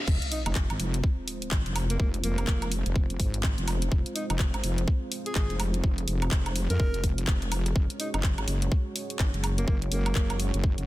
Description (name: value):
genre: bass house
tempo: 125 BPM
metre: 4/4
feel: swing 60% on 16ths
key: F phrygian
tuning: A4 = 440 Hz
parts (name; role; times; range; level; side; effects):
- dark analog pad; sustained chords; 0.0-10.9 s; Ab3 to Db5; -37 LUFS; right 2 dB; chorus, sidechain pumping
- riser and sub drop; sound effects; 0.0-2.0 s; none; -35 LUFS; equal; none
- wobble bass; bass; 0.1-10.9 s; F1 to F2; -28 LUFS; equal; chorus, sidechain pumping
- electronic kick drum; drums; 0.1-10.8 s; none; -26 LUFS; equal; none
- garage drum kit; drums; 0.1-10.9 s; crash cymbal, handclaps, hi-hat, woodblock; -34 LUFS; equal; low-pass filter on perc, low-pass filter on snare, low-pass filter on cymbals, low-pass filter on hats
- warm alto saxophone; melody; 0.3-10.4 s; Bb3 to Bb4; -37 LUFS; right 1 dB; digital delay
room: digital ambience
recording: dense, heavily limited modern master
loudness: -25 LUFS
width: side -17 dB against mid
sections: 0.1-10.9 A section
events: drop 0.1-10.9; impact 0.1-2.0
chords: 0.1 Fm; 7.8 Gbsus2